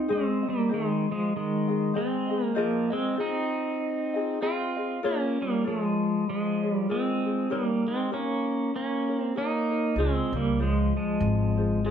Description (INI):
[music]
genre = Hawaiian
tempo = 97 BPM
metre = 4/4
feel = swing 58% on 8ths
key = Ab major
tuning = A4 = 440 Hz
[part]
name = pedal steel guitar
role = melody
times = 0.0-11.9 s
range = Eb3 to F4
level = -26 LUFS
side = equal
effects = none
[part]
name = ukulele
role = accompaniment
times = 0.0-11.9 s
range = C4 to Eb5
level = -32 LUFS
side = left 4 dB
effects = none
[part]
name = upright bass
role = bass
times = 10.0-11.9 s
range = Ab1 to Db2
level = -26 LUFS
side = equal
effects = none
[sound]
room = moderate large studio reverb, RT60 1.2 s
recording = band playing live in one room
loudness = -24 LUFS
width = side -8 dB against mid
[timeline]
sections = 0.1-11.9 A section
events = none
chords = 0.1 Ab; 2.6 Fm7; 5.0 Bbm7; 7.5 Eb7; 10.0 Dbmaj7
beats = | 0.08 0.70 1.32 1.93 | 2.55 3.17 3.79 4.40 | 5.02 5.64 6.26 6.88 | 7.50 8.11 8.73 9.35 | 9.97 10.59 11.21 11.83